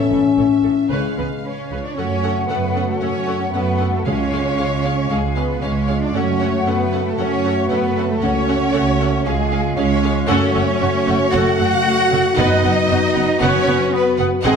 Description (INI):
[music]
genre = cinematic, heroic adventure film score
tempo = 115 BPM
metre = 4/4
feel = straight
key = F# harmonic minor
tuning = A4 = 443 Hz
[part]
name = clear symphonic violin section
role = melody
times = 0.0-14.6 s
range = C#5 to F#5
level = -31 LUFS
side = left 3 dB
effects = none
[part]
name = warm symphonic violin section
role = second line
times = 0.0-14.6 s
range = G#4 to F#5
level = -23 LUFS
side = left 1 dB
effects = none
[part]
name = rich symphonic viola section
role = accompaniment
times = 0.0-14.6 s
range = B3 to B4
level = -26 LUFS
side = right 2 dB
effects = none
[part]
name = mellow French horn section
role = sustained chords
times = 0.0-14.6 s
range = G#3 to F#4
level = -22 LUFS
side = left 3 dB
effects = none
[part]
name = concert harp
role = arpeggios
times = 0.0-14.6 s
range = F#2 to F#5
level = -26 LUFS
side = left 8 dB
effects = none
[part]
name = timpani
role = percussion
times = 0.0-0.6, 4.1-4.8, 12.4-13.1 s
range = F#2 to C#3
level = -27 LUFS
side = right 1 dB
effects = none
[part]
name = rich symphonic cello section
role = bass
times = 0.1-14.6 s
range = A2 to F#4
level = -24 LUFS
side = right 4 dB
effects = none
[part]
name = warm studio double bass section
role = bass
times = 0.1-14.5 s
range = F#1 to F#2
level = -24 LUFS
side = right 6 dB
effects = none
[part]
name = flute section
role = second line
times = 2.0-14.5 s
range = E#5 to F#5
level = -28 LUFS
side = left 2 dB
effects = none
[part]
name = warm clarinet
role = second line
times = 2.0-14.6 s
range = G#3 to B#3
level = -26 LUFS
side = equal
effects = none
[sound]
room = wet scoring stage reverb, RT60 1.7 s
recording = none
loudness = -15 LUFS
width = side -6 dB against mid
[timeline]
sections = 0.0-2.0 A section; 2.0-14.6 B section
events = none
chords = 0.0 A; 0.9 C#7; 2.0 F#m; 4.1 C#; 6.2 F#m; 8.2 F#m/C#; 9.3 C#; 10.3 F#m; 12.4 B/F#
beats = 0.38 0.91 1.45 | 1.98 2.50 3.02 3.54 | 4.07 4.59 5.11 5.63 | 6.15 6.67 7.19 7.71 | 8.23 8.75 9.27 9.78 | 10.30 10.82 11.34 11.86 | 12.38 12.90 13.41 13.93 | 14.45